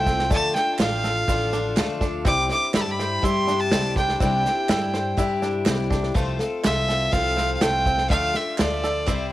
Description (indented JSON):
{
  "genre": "indie folk with a building arrangement",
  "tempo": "123 BPM",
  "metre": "4/4",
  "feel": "straight",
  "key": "C major",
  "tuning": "A4 = 440 Hz",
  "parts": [
    { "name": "bright fiddle", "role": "melody", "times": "0.0-9.3 s", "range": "D5 to D6", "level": "-24 LUFS", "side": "right 1 dB", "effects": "analog delay" },
    { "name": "picked twelve-string acoustic guitar", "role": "accompaniment", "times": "0.0-9.3 s", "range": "C3 to C5", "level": "-27 LUFS", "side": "left 5 dB", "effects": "cassette tape" },
    { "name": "bluegrass banjo", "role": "arpeggios", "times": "0.0-9.3 s", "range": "A3 to C5", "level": "-31 LUFS", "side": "right 4 dB", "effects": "cassette tape" },
    { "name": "upright bass", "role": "bass", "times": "0.0-9.3 s", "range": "A1 to G2", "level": "-28 LUFS", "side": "equal", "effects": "none" },
    { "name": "unplugged drum kit", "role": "drums", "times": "0.1-9.2 s", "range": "kick drum, snare drum", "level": "-25 LUFS", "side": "right 1 dB", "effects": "none" },
    { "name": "tube shaker", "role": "percussion", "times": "0.1-9.2 s", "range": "none", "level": "-45 LUFS", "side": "right 11 dB", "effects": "none" },
    { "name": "group handclap", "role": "percussion", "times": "0.8-9.2 s", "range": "none", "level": "-34 LUFS", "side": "right 9 dB", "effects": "none" }
  ],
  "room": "little or no reverb",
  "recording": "home recording on cassette",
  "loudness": "-20 LUFS",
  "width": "side -15 dB against mid",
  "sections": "0.0-9.3 A section",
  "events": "none",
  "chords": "0.3 Dm; 2.3 Cadd9; 6.2 F/C; 8.1 Dm"
}